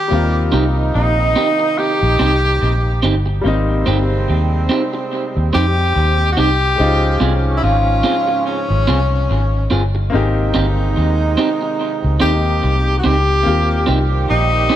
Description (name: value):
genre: reggae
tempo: 72 BPM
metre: 4/4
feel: swing 57% on 16ths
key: Eb mixolydian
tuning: A4 = 440 Hz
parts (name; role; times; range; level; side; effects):
- warm tenor saxophone; melody; 0.0-14.8 s; Db4 to G4; -18 LUFS; left 1 dB; tape echo
- clear grand piano; accompaniment; 0.0-14.8 s; G3 to C5; -24 LUFS; left 4 dB; none
- mellow horn section; second line; 0.1-14.8 s; Ab2 to G4; -24 LUFS; right 4 dB; dub echo
- vintage muted fingered electric bass; bass; 0.1-14.7 s; G1 to F2; -16 LUFS; equal; none
- electric guitar through a small old amp; stabs; 0.5-14.8 s; C4 to Ab4; -22 LUFS; right 3 dB; dub echo
room: light reverb, small room ambience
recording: none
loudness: -13 LUFS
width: side -11 dB against mid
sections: 0.1-14.8 A section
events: none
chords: 0.1 Eb6; 3.5 Abmaj7; 6.8 Dbmaj7; 10.1 Abmaj7; 13.5 Eb6